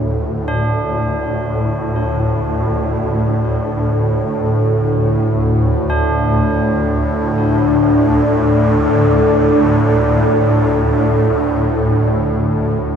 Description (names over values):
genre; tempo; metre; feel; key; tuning
dark ambient drone; free time; none; none; unclear; A4 = 440 Hz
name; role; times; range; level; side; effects
tubular bells; arpeggios; 0.0-13.0 s; D4; -26 LUFS; right 2 dB; ping-pong delay
swarming drone; drone; 0.0-13.0 s; D2 to A2; -15 LUFS; equal; built-in reverb
deep dark ambient pad; sustained chords; 7.0-13.0 s; D4 to D5; -15 LUFS; left 1 dB; chorus, built-in reverb
room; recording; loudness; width
wet cathedral reverb, RT60 5.6 s; none; -13 LUFS; side -7 dB against mid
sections
0.0-13.0 A section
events
fade-in on tubular bells 0.0-13.0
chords
0.0 D5